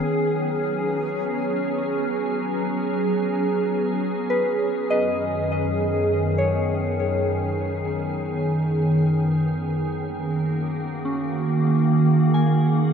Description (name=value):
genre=ambient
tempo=free time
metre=none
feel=none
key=unclear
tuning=A4 = 440 Hz
part: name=glassy FM pad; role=sustained chords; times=0.0-12.9 s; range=F#2 to G#4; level=-21 LUFS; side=right 1 dB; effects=ensemble chorus, built-in reverb
part: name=soft synth bell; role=arpeggios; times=0.0-12.9 s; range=C#4 to G#5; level=-28 LUFS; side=left 2 dB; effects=chorus, ping-pong delay
room=wet huge ambient reverb, RT60 9.0 s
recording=dark, warm production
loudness=-20 LUFS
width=side -7 dB against mid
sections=0.1-12.9 A section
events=none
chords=0.1 C#7sus4/F#; 4.9 B69/F#; 9.8 F#69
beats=free time